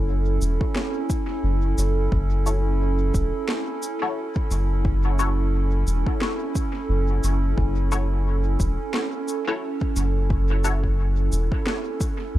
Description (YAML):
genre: ambient dub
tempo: 88 BPM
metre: 4/4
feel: swing 57% on 16ths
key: F# minor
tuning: A4 = 440 Hz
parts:
  - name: warbly tape-like pad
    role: sustained chords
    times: 0.0-12.4 s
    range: C#4 to A4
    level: -28 LUFS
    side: right 3 dB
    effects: chorus, built-in reverb
  - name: soft dub sub bass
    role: bass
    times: 0.0-12.4 s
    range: E1 to C#2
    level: -21 LUFS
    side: equal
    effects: none
  - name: electronic shaker and snare drum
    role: drums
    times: 0.4-12.2 s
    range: none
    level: -31 LUFS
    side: equal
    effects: overdrive, dub echo
  - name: electronic kick drum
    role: drums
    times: 0.6-12.2 s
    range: none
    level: -26 LUFS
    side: equal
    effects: overdrive
  - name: filtered dub chord stab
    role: stabs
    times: 2.5-10.9 s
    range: E4 to C#5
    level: -32 LUFS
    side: left 4 dB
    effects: phaser, ensemble chorus, cassette tape, dub echo
room: little or no reverb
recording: dark, warm production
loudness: -21 LUFS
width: side -14 dB against mid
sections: 0.0-12.4 A section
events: none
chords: 0.0 F#m7